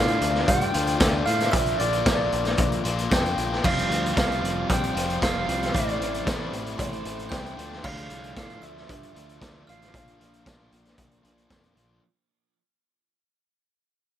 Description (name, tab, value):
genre	indie rock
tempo	114 BPM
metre	4/4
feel	straight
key	unclear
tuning	A4 = 439 Hz
part	electric guitar through a small old amp	melody	0.0-11.5 s	C5 to G5	-29 LUFS	right 1 dB	none
part	glockenspiel with brass mallets	second line	0.0-11.5 s	C6 to G6	-37 LUFS	right 3 dB	digital delay
part	ensemble organ-string	sustained chords	0.0-12.0 s	F4 to C6	-39 LUFS	right 1 dB	none
part	overdriven electric guitar	riff	0.0-12.0 s	A2 to F4	-30 LUFS	left 6 dB	none
part	picked electric bass	bass	0.0-12.0 s	F1 to A2	-31 LUFS	equal	none
part	raw garage drum kit	drums	0.1-11.9 s	crash cymbal, hi-hat, kick drum, snare drum	-26 LUFS	equal	none
part	thick fuzz guitar	riff	3.6-12.0 s	A2 to F4	-34 LUFS	right 5 dB	distortion, wide subtle chorus
room	light reverb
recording	none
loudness	-22 LUFS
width	side -11 dB against mid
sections	0.0-12.0 A section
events	fade-out 0.0-12.0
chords	0.0 Dm; 1.5 Bb; 3.6 Fsus2; 5.7 Am; 7.6 Dmadd9; 9.9 Bb